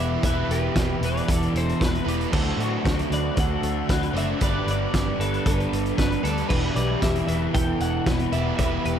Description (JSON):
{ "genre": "rock, shoegaze and dream pop", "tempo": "115 BPM", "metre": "4/4", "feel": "straight", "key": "E minor", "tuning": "A4 = 440 Hz", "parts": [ { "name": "twelve-string electric guitar", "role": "melody", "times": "0.0-9.0 s", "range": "A4 to G5", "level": "-31 LUFS", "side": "left 2 dB", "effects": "analog delay" }, { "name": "electric guitar at the edge of break-up", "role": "arpeggios", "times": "0.0-9.0 s", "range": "F#4 to D5", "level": "-33 LUFS", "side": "left 3 dB", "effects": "ensemble chorus, analog delay" }, { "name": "overdriven electric guitar", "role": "riff", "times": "0.0-9.0 s", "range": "D3 to C5", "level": "-28 LUFS", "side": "right 10 dB", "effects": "reverse reverb" }, { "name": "thick fuzz guitar", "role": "riff", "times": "0.0-9.0 s", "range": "E2 to D4", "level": "-29 LUFS", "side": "left 11 dB", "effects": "distortion, analog chorus" }, { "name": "vintage muted fingered electric bass", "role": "bass", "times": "0.0-9.0 s", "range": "E1 to A2", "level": "-27 LUFS", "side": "equal", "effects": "none" }, { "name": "loose indie drum kit", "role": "drums", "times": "0.2-9.0 s", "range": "crash cymbal, hi-hat, kick drum, snare drum", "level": "-26 LUFS", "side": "equal", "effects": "none" } ], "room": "moderate plate reverb, RT60 1.3 s", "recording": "dreamy mix soaked in reverb", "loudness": "-21 LUFS", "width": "side -9 dB against mid", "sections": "0.0-9.0 A section", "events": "none", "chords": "0.0 Em; 2.3 D7; 4.4 G; 6.5 Em" }